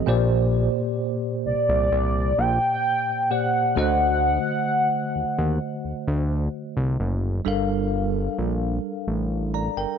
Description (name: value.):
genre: contemporary R&B.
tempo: 65 BPM.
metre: 4/4.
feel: straight.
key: G minor.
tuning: A4 = 440 Hz.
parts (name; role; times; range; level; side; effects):
bell-like tine electric piano; accompaniment; 0.0-10.0 s; Bb2 to Bb5; -26 LUFS; equal; medium stereo tremolo.
fat analog bass; bass; 0.0-9.9 s; F#1 to Eb2; -24 LUFS; equal; none.
warm velvety synth lead; melody; 1.5-6.5 s; D5 to G5; -22 LUFS; equal; chorus, ping-pong delay.
room: light reverb.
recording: none.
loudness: -21 LUFS.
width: side -7 dB against mid.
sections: 0.0-7.5 A section; 7.5-10.0 B section.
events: none.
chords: 0.1 Bb69; 3.8 D7b9; 7.5 Gm9.